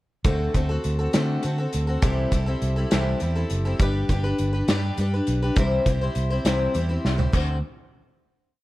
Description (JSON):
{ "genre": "folk rock and heartland rock", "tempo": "68 BPM (dotted quarters)", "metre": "6/8", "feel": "straight", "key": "D mixolydian", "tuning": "A4 = 440 Hz", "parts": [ { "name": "picked twelve-string acoustic guitar", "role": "accompaniment", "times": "0.2-7.6 s", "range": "C3 to C5", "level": "-26 LUFS", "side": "left 2 dB", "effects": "none" }, { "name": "fingered electric bass", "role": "bass", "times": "0.2-7.6 s", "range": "F#1 to D3", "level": "-24 LUFS", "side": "equal", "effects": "none" }, { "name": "loose indie drum kit", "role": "drums", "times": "0.2-7.5 s", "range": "crash cymbal, hi-hat, kick drum, snare drum, toms", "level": "-25 LUFS", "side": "equal", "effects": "none" } ], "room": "small room ambience", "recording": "none", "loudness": "-21 LUFS", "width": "side -17 dB against mid", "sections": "0.3-7.3 verse; 7.3-8.6 final chord", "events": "drum fill 7.0", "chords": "0.3 D7; 2.0 C6; 3.8 G; 5.6 C; 7.3 D7" }